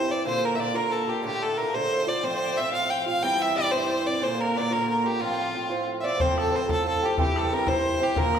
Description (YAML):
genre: celtic folk, Celtic jig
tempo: 121 BPM (dotted quarters)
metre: 6/8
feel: straight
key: F major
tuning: A4 = 441 Hz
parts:
  - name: clear fiddle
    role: melody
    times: 0.0-8.4 s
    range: F4 to G5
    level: -25 LUFS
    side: equal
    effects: none
  - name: clear fiddle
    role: second line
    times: 0.0-8.4 s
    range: F4 to G5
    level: -33 LUFS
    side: left 5 dB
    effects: none
  - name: Irish bouzouki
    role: accompaniment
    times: 0.0-8.4 s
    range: G2 to F4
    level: -28 LUFS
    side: right 2 dB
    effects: none
  - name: open-back banjo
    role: second line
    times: 6.0-8.4 s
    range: G4 to D5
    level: -31 LUFS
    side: right 2 dB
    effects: none
  - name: bodhran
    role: percussion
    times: 6.2-8.4 s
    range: none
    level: -28 LUFS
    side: left 2 dB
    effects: none
room: wet recital hall reverb, RT60 1.7 s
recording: recorded in a church or concert hall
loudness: -23 LUFS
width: side -8 dB against mid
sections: 0.0-6.2 A section; 6.2-8.4 A section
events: none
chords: 0.3 Bb; 1.3 Dm; 2.2 F; 3.2 C; 4.2 Bb; 5.2 F; 7.2 C